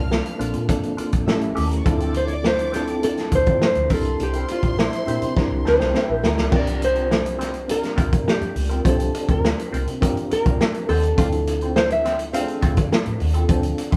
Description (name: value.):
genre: lush 1970s-style soul.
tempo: 103 BPM.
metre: 4/4.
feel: straight.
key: unclear.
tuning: A4 = 439 Hz.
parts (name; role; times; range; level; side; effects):
nylon-string guitar; melody; 0.0-14.0 s; E4 to F5; -26 LUFS; equal; none.
warm symphonic string section; second line; 0.0-6.2 s; E4 to F6; -36 LUFS; equal; none.
reed electric piano; accompaniment; 0.0-14.0 s; A3 to A5; -30 LUFS; equal; fast tremolo.
vintage muted fingered electric bass; bass; 0.0-14.0 s; A1 to D3; -27 LUFS; equal; none.
mellow electric guitar; riff; 0.1-14.0 s; C4 to C5; -33 LUFS; equal; wah, tremolo.
vintage drum kit; drums; 0.1-14.0 s; crash cymbal, hi-hat, kick drum, snare drum; -25 LUFS; equal; none.
warm horn section; stabs; 11.2-12.7 s; F3 to F4; -34 LUFS; equal; none.
room: light reverb.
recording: band playing live in one room.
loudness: -21 LUFS.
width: mono.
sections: 0.0-6.5 A section; 6.5-14.0 B section.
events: drum fill 5.4-6.5; reed electric piano fill 5.4-6.5.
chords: 0.0 Bbmaj7; 1.3 A7; 1.9 Dm7; 3.9 C7; 6.5 C7sus4; 11.2 Dm7.